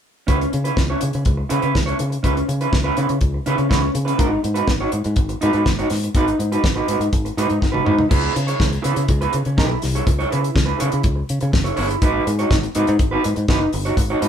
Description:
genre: disco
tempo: 123 BPM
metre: 4/4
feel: straight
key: C# minor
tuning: A4 = 441 Hz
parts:
  - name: electric guitar at the edge of break-up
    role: accompaniment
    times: 0.3-14.3 s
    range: C#4 to C#5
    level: -21 LUFS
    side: right 2 dB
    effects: none
  - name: fingered electric bass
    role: bass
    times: 0.3-14.3 s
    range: F#1 to C#3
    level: -22 LUFS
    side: left 1 dB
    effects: none
  - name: damped 70s drum kit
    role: drums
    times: 0.3-14.3 s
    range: crash cymbal, hi-hat, kick drum, snare drum, toms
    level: -20 LUFS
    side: equal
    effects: none
room: moderate studio ambience, RT60 0.5 s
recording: band playing live in one room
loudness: -17 LUFS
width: side -8 dB against mid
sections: 0.3-8.1 A section; 8.1-14.3 B section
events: drum fill 7.6-8.1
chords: 0.3 C#m7; 4.2 G#m7; 8.1 C#m7; 12.0 G#m7

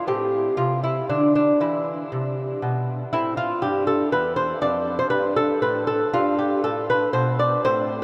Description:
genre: classical, baroque-style dance for lute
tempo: 79 BPM (dotted quarters)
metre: 12/8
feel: rubato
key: A minor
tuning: A4 = 440 Hz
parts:
  - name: lute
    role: solo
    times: 0.0-8.0 s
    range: E2 to D5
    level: -22 LUFS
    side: equal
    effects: none
room: wet huge ambient reverb, RT60 8.0 s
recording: in a vast, echoing space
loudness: -22 LUFS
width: mono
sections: 0.0-8.0 A section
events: none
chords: 0.1 Am; 4.6 Dm/F; 6.1 G

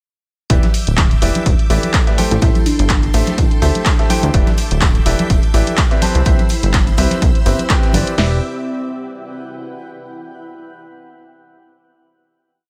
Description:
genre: piano house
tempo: 125 BPM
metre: 4/4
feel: swing 55% on 16ths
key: E minor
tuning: A4 = 440 Hz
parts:
  - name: string machine, violins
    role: sustained chords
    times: 0.5-8.4 s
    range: A4 to G6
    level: -33 LUFS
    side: equal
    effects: ensemble chorus, sidechain pumping
  - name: bright concert grand piano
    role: riff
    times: 0.5-8.4 s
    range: E3 to A5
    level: -24 LUFS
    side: equal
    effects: sidechain pumping, tape echo
  - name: plucky analog bass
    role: bass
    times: 0.5-8.4 s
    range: D1 to D2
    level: -19 LUFS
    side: equal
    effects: sidechain pumping
  - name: dusty soul sampler-style drum kit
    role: drums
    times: 0.5-8.1 s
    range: hi-hat, snare drum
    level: -33 LUFS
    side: equal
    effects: none
  - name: punchy analog drum machine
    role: drums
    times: 0.5-8.3 s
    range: hi-hat, kick drum, snare drum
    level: -17 LUFS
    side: equal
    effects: none
  - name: punchy analog drum machine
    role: drums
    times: 0.5-8.2 s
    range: handclaps, hi-hat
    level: -24 LUFS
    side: equal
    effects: none
  - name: tambourine and congas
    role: percussion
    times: 0.5-8.2 s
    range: none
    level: -28 LUFS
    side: equal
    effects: none
  - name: granular cloud pad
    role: texture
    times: 1.7-10.1 s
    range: C4 to C6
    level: -32 LUFS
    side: equal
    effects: built-in reverb, sidechain pumping
  - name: buzzing kalimba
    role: melody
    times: 1.7-3.1 s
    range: D4 to A4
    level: -28 LUFS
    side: equal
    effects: tape echo
room: digital ambience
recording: none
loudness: -15 LUFS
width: mono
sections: 0.5-8.2 drop; 8.2-10.1 final chord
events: drop 0.5-8.2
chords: 0.5 Em7; 2.2 Am7; 4.3 Em7; 6.0 Cmaj7; 8.2 Em7

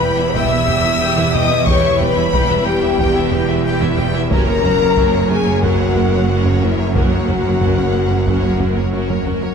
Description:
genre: cinematic, hybrid orchestral and electronic film score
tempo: 91 BPM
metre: 4/4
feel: straight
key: unclear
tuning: A4 = 440 Hz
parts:
  - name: clear symphonic violin section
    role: melody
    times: 0.0-9.5 s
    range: A#4 to G5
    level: -27 LUFS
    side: left 6 dB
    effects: none
  - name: warm symphonic violin section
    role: second line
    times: 0.0-9.2 s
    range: E5 to E6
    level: -23 LUFS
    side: left 3 dB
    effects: none
  - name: clear symphonic viola section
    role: accompaniment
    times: 0.0-9.5 s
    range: G3 to A#4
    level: -26 LUFS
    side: right 2 dB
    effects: none
  - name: dark French horn section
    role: sustained chords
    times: 0.0-9.3 s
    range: E4 to E5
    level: -19 LUFS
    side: left 5 dB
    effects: none
  - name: evolving wavetable pad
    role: sustained chords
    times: 0.0-9.5 s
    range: E3 to B4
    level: -25 LUFS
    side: left 1 dB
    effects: phaser, built-in reverb
  - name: harp-like synth pluck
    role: arpeggios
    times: 0.0-9.5 s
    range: E3 to F#4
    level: -28 LUFS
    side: left 3 dB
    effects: none
  - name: plucky analog bass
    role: riff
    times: 0.0-9.5 s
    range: E2 to F#3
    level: -26 LUFS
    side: right 2 dB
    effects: none
  - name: clear chamber double bass section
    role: bass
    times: 0.0-9.4 s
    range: E1 to F#1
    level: -22 LUFS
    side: right 5 dB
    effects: none
  - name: rich symphonic cello section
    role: bass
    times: 0.0-9.4 s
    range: E2 to F#2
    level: -20 LUFS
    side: right 4 dB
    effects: none
  - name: taiko ensemble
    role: drums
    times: 0.4-9.5 s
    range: none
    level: -23 LUFS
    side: equal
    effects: none
room: wet concert hall reverb, RT60 2.3 s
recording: none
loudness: -13 LUFS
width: side -6 dB against mid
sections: 0.0-9.5 A section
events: none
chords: 0.0 Em; 4.3 F#

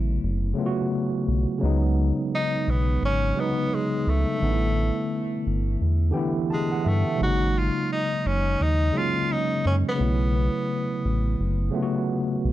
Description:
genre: hip hop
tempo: 86 BPM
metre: 4/4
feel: swing 60% on 16ths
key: C# minor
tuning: A4 = 440 Hz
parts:
  - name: tine electric piano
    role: accompaniment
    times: 0.0-12.5 s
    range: B#2 to A5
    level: -25 LUFS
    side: equal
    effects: medium stereo tremolo, cassette tape, low-pass filter
  - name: round analog bass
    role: bass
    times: 0.0-12.5 s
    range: F#1 to G2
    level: -23 LUFS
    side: equal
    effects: none
  - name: bright tenor saxophone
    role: melody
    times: 2.3-11.9 s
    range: G#3 to F#4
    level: -28 LUFS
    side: equal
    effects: low-pass filter, analog delay
room: moderate studio reverb, RT60 0.6 s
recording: none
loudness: -22 LUFS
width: side -14 dB against mid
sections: 0.0-12.5 A section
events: none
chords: 0.0 B9sus4; 1.6 C#9sus4; 4.4 A9sus4; 7.2 G#9sus4; 10.0 B9sus4

